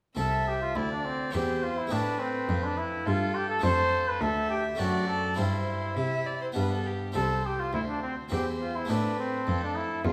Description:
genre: classical, baroque-style sonata movement with continuo.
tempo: 104 BPM.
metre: 3/4.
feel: straight.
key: C major.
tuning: A4 = 438 Hz.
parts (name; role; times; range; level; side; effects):
harpsichord; accompaniment; 0.1-10.1 s; C2 to E4; -36 LUFS; equal; none.
warm trumpet; melody; 0.2-10.1 s; C4 to C5; -32 LUFS; equal; none.
rich violin; second line; 0.2-10.1 s; G4 to E5; -37 LUFS; equal; none.
rich cello; bass; 0.2-10.1 s; C2 to C3; -34 LUFS; equal; none.
room: wet recital hall reverb, RT60 1.7 s.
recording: none.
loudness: -29 LUFS.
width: mono.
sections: 0.2-10.1 A section.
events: none.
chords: 0.2 C; 1.3 C/E; 1.9 Am; 3.6 Dm/F; 4.8 D7/F#; 5.4 C/G; 6.6 G; 7.2 C; 8.3 C/E; 8.9 Am.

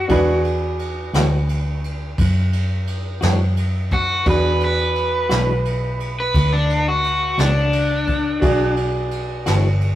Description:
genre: slow blues.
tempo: 58 BPM (dotted quarters).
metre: 12/8.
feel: straight.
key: unclear.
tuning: A4 = 440 Hz.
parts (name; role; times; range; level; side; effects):
crunchy overdriven guitar; melody; 0.0-8.7 s; D4 to B4; -20 LUFS; left 1 dB; none.
bright upright piano; accompaniment; 0.0-10.0 s; D4 to D5; -22 LUFS; right 1 dB; none.
vintage muted fingered electric bass; bass; 0.0-10.0 s; G1 to F#2; -20 LUFS; equal; none.
clean electric guitar; accompaniment; 0.1-9.7 s; E3 to F#4; -26 LUFS; left 2 dB; tremolo.
jazz brush drum kit; drums; 0.1-10.0 s; kick drum, ride cymbal, snare drum; -25 LUFS; equal; none.
room: moderate stone room reverb, RT60 1.1 s.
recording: rough rehearsal-room recording, tube saturation.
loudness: -17 LUFS.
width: side -13 dB against mid.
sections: 0.0-10.0 A section.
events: overdriven electric guitar solo 0.0-10.0.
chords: 0.1 E9.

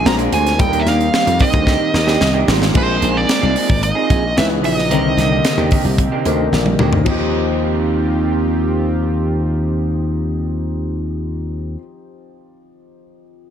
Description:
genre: polished 1980s jazz-funk pop.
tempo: 111 BPM.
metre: 4/4.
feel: straight.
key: Eb major.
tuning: A4 = 441 Hz.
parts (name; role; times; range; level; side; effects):
nasal lead guitar with a parked wah; melody; 0.0-6.5 s; C5 to Bb5; -20 LUFS; right 2 dB; overdrive.
warm grand piano; accompaniment; 0.0-13.5 s; D3 to Cb5; -23 LUFS; left 4 dB; wide subtle chorus.
warm analog pad; sustained chords; 0.0-11.8 s; C3 to G4; -25 LUFS; equal; chorus.
electric guitar through a small old amp; riff; 0.0-11.8 s; Eb3 to Ab4; -24 LUFS; right 6 dB; lush chorus.
glassy slap bass; bass; 0.1-11.8 s; Ab1 to F2; -18 LUFS; equal; none.
tight funk drum kit; drums; 0.1-7.2 s; crash cymbal, hi-hat, kick drum, snare drum, toms; -18 LUFS; equal; gated reverb.
room: light reverb, small room reverb.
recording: none.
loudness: -14 LUFS.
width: side -9 dB against mid.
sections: 0.0-2.8 A section; 2.8-7.1 B section; 7.1-11.4 C section.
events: drum fill 1.7-2.8, 6.5-7.1.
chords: 0.1 Bb9; 0.6 Ebmaj7; 2.8 Bb9sus4; 4.4 Dbm9; 4.9 Cm9; 7.1 Eb69.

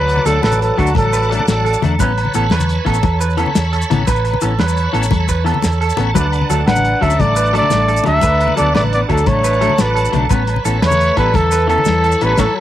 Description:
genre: highlife guitar band.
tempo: 115 BPM (dotted quarters).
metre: 12/8.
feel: straight.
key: D major.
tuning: A4 = 440 Hz.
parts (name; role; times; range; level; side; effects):
breathy trumpet; melody; 0.0-1.8, 6.7-12.6 s; F#4 to F#5; -16 LUFS; equal; cassette tape, tape echo.
breathy alto saxophone; second line; 0.0-1.8, 6.7-12.6 s; D3 to D4; -26 LUFS; left 7 dB; cassette tape.
bright tonewheel organ; sustained chords; 0.0-12.6 s; D4 to B5; -26 LUFS; equal; chorus vibrato, slow rotary speaker, cassette tape.
hollow-body short-scale fingered electric bass; bass; 0.0-12.5 s; A1 to E2; -18 LUFS; equal; none.
damped 70s drum kit; drums; 0.1-12.5 s; hi-hat, kick drum, snare drum; -20 LUFS; equal; none.
agogo bells; percussion; 0.1-12.5 s; none; -27 LUFS; left 12 dB; none.
maracas; percussion; 0.1-12.5 s; none; -29 LUFS; left 9 dB; none.
congas; percussion; 0.2-12.5 s; none; -23 LUFS; left 7 dB; none.
semi-hollow electric guitar; accompaniment; 0.3-12.4 s; E3 to D4; -21 LUFS; left 7 dB; cassette tape.
clean electric guitar; arpeggios; 0.3-12.4 s; A4 to C#5; -21 LUFS; right 9 dB; lush chorus, cassette tape, tape echo.
room: light reverb.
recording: home recording on cassette.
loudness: -12 LUFS.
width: side -12 dB against mid.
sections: 0.0-12.6 A section.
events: band accent 12.4.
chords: 0.0 D; 2.0 Aadd9; 6.2 D; 10.3 Aadd9.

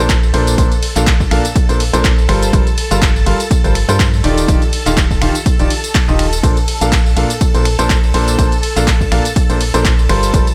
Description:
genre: piano house.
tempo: 123 BPM.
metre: 4/4.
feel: swing 55% on 16ths.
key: Bb major.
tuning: A4 = 440 Hz.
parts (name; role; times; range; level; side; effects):
string machine, violins; sustained chords; 0.0-10.5 s; A4 to A5; -27 LUFS; equal; ensemble chorus, sidechain pumping.
clear baby grand piano; riff; 0.0-10.5 s; Bb2 to F5; -20 LUFS; equal; sidechain pumping.
organ-like FM bass; bass; 0.0-10.4 s; Eb1 to G2; -19 LUFS; equal; sidechain pumping.
electronic kick drum; drums; 0.1-10.4 s; none; -17 LUFS; equal; none.
punchy analog drum machine; drums; 0.1-10.5 s; finger snaps, handclaps, hi-hat, ride cymbal, tambourine; -23 LUFS; equal; none.
room: digital ambience.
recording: none.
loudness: -13 LUFS.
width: mono.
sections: 0.0-10.5 A section.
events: none.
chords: 0.0 Bbmaj9; 2.3 Gm11; 4.2 Ebmaj9; 6.4 Bbmaj9.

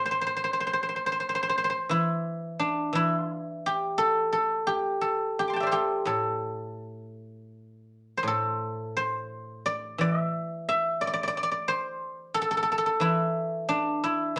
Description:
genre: chinese traditional, Chinese solo plucked strings.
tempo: 81-91 BPM.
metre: 4/4.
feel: rubato.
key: unclear.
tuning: A4 = 444 Hz.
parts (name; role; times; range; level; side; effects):
guzheng; solo; 0.0-14.4 s; A2 to D6; -28 LUFS; equal; none.
room: moderate studio reverb, RT60 0.6 s.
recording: none.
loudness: -28 LUFS.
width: mono.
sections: 0.0-14.4 A section.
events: none.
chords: none.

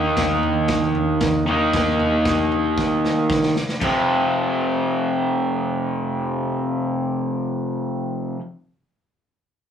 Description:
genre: garage rock duo or trio.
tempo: 115 BPM.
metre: 4/4.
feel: straight.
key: unclear.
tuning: A4 = 440 Hz.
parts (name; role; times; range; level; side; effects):
raw garage guitar; riff; 0.0-8.4 s; F2 to Eb4; -19 LUFS; equal; overdrive.
raw garage drum kit; drums; 0.2-3.9 s; crash cymbal, kick drum, snare drum, toms; -25 LUFS; equal; none.
room: wet small room ambience, RT60 0.5 s.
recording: rough rehearsal-room recording.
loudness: -19 LUFS.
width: side -8 dB against mid.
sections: 0.0-3.8 A section; 3.8-8.0 B section.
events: drum fill 2.8-3.8.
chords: 0.0 Eb5; 3.8 F5.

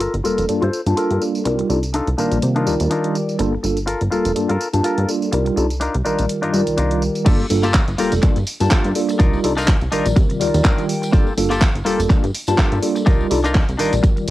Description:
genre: filtered disco house.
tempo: 124 BPM.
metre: 4/4.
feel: swing 56% on 16ths.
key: G minor.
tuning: A4 = 440 Hz.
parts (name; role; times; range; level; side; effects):
direct-recorded clean electric guitar; riff; 0.0-14.2 s; Bb3 to G5; -23 LUFS; left 2 dB; sidechain pumping, low-pass filter.
plucky analog bass; bass; 0.0-14.3 s; F1 to C3; -21 LUFS; equal; sidechain pumping, low-pass filter.
house drum kit; drums; 0.0-14.3 s; crash cymbal, handclaps, hi-hat, tambourine; -27 LUFS; right 1 dB; sidechain pumping on hats, sidechain pumping on perc, sidechain pumping on cymbals.
tambourine; percussion; 0.0-14.3 s; none; -38 LUFS; equal; sidechain pumping on perc, low-pass filter on perc.
tine electric piano; accompaniment; 0.2-14.3 s; Eb3 to A5; -20 LUFS; equal; medium stereo tremolo, phaser, sidechain pumping, low-pass filter.
electronic kick drum; drums; 7.3-14.1 s; none; -15 LUFS; equal; none.
room: light reverb.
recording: home recording on cassette.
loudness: -16 LUFS.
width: side -16 dB against mid.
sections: 0.0-7.3 A section; 7.3-14.3 B section.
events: filter sweep 0.0-7.3; clean electric guitar fill 2.7-3.4, 10.4-11.1; drop 7.3-14.3.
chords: 0.0 Gm9; 1.5 Cm11; 3.4 Gm9; 5.3 Cm11; 7.3 Gm9; 9.2 Cm11; 11.1 Gm9; 13.1 Cm11.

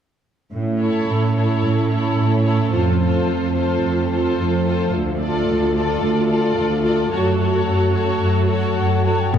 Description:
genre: cinematic.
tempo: 109 BPM.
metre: 4/4.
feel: straight.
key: unclear.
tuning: A4 = 444 Hz.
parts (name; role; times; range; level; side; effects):
dark French horn section; sustained chords; 0.5-9.4 s; A3 to A4; -23 LUFS; equal; none.
rich symphonic cello section; bass; 0.5-9.4 s; D2 to A2; -20 LUFS; right 1 dB; none.
warm symphonic violin section; melody; 0.8-9.4 s; C5 to D5; -29 LUFS; left 3 dB; none.
warm studio violin section; second line; 0.8-9.4 s; A4; -26 LUFS; left 4 dB; none.
rich symphonic viola section; accompaniment; 0.8-9.4 s; E4 to F#4; -25 LUFS; right 2 dB; none.
hollow concert flute; second line; 8.8-9.4 s; F#5 to A5; -25 LUFS; left 3 dB; none.
warm trombone section; sustained chords; 9.3-9.4 s; none; barely audible; none; none.
concert harp; arpeggios; 9.3-9.4 s; A2; -19 LUFS; left 12 dB; none.
clear symphonic double bass section; bass; 9.3-9.4 s; A1; -22 LUFS; right 1 dB; none.
timpani; percussion; 9.3-9.4 s; A2; -19 LUFS; left 2 dB; none.
room: wet scoring stage reverb, RT60 2.1 s.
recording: heard from further back in the room.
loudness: -16 LUFS.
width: side -8 dB against mid.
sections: 0.5-9.3 A section.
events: none.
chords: 0.5 A; 2.7 F; 4.9 Dm; 7.1 F#m.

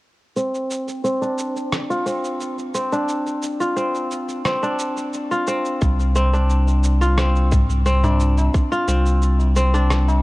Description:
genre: organic downtempo.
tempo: 88 BPM.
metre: 4/4.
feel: straight.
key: unclear.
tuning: A4 = 440 Hz.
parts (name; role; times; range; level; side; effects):
kora; arpeggios; 0.4-10.2 s; C4 to F4; -22 LUFS; equal; low-pass filter, ping-pong delay.
electronic cabasa and rim click; drums; 0.4-10.2 s; none; -29 LUFS; right 1 dB; none.
warm sub bass; bass; 5.8-10.2 s; C2; -16 LUFS; equal; none.
electronic kick drum; drums; 5.8-8.7 s; none; -18 LUFS; equal; overdrive.
tabla; percussion; 5.8-10.2 s; none; -28 LUFS; left 2 dB; none.
room: digital ambience.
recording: worn, warbling old tape, cassette tape, warbly pitch drift.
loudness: -18 LUFS.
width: side -20 dB against mid.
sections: 0.4-10.2 A section.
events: filter sweep on kora 0.4-10.2.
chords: 0.4 Csus24.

